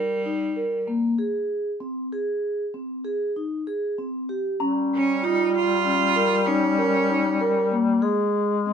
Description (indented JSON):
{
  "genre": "contemporary instrumental, chamber music in an uneven meter",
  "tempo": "193 BPM (eighths)",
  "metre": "11/8",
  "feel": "straight",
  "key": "unclear",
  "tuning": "A4 = 438 Hz",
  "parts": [
    { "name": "bright cello", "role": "melody", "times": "0.0-7.7 s", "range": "G3 to F4", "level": "-24 LUFS", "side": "right 4 dB", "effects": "none" },
    { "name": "vibraphone with medium mallets", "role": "arpeggios", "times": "0.0-8.7 s", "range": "Bb3 to Bb4", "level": "-24 LUFS", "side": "equal", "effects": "none" },
    { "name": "warm duduk", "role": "second line", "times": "4.6-8.7 s", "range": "G3 to Ab3", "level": "-25 LUFS", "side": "left 6 dB", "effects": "none" },
    { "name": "small celesta", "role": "texture", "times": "4.6-5.4 s", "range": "Bb5", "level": "-32 LUFS", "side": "left 3 dB", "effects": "none" }
  ],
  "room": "moderate studio reverb, RT60 0.8 s",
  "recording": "minimal, uncompressed stereo recording",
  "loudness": "-21 LUFS",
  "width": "side -7 dB against mid",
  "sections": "0.0-8.7 A section",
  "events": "none",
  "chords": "0.0 Eb; 1.2 Ab/C; 4.6 Eb9; 8.0 N.C."
}